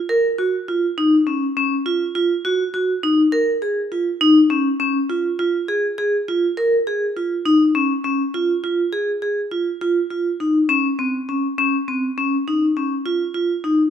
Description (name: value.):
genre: contemporary instrumental, contemporary.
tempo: 204 BPM (eighths).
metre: 11/8.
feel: straight.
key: unclear.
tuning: A4 = 439 Hz.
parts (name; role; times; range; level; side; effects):
vibraphone with hard mallets; solo; 0.1-13.8 s; C4 to Bb4; -17 LUFS; equal; none.
room: moderate recital hall reverb, RT60 1.3 s.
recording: close, detailed microphones.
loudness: -17 LUFS.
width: side -9 dB against mid.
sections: 0.0-9.8 A section; 9.8-13.9 A section.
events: none.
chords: none.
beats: | 0.09 0.39 0.68 0.98 1.27 1.56 1.86 2.15 2.45 2.74 3.04 | 3.33 3.63 3.92 4.21 4.51 4.80 5.10 5.39 5.69 5.98 6.28 | 6.57 6.87 7.16 7.46 7.75 8.04 8.34 8.63 8.93 9.22 9.52 | 9.81 10.11 10.40 10.70 10.99 11.29 11.58 11.88 12.17 12.47 12.76 | 13.06 13.35 13.65.